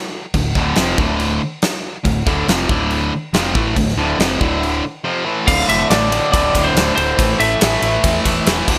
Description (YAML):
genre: hard rock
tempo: 140 BPM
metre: 4/4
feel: straight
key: D minor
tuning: A4 = 440 Hz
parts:
  - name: sludgy distorted guitar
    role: riff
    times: 0.3-8.8 s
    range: D2 to A3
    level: -20 LUFS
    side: equal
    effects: overdrive
  - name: hollow-body short-scale fingered electric bass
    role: bass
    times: 0.3-8.8 s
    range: D1 to E2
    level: -26 LUFS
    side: equal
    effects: none
  - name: gated 80s drum kit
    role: drums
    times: 0.3-8.8 s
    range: crash cymbal, kick drum, ride cymbal, snare drum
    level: -21 LUFS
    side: equal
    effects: none
  - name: lightly driven lead guitar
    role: melody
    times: 5.5-8.2 s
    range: C5 to F5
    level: -20 LUFS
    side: equal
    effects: none
room: studio reverb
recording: none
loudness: -17 LUFS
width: mono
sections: 0.0-5.5 A section; 5.5-8.8 B section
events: none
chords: 0.0 Dm; 5.5 D5; 7.2 A5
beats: | 0.34 0.77 1.19 1.62 | 2.05 2.48 2.91 3.33 | 3.76 4.19 4.62 5.05 | 5.47 5.90 6.33 6.75 | 7.18 7.61 8.03 8.46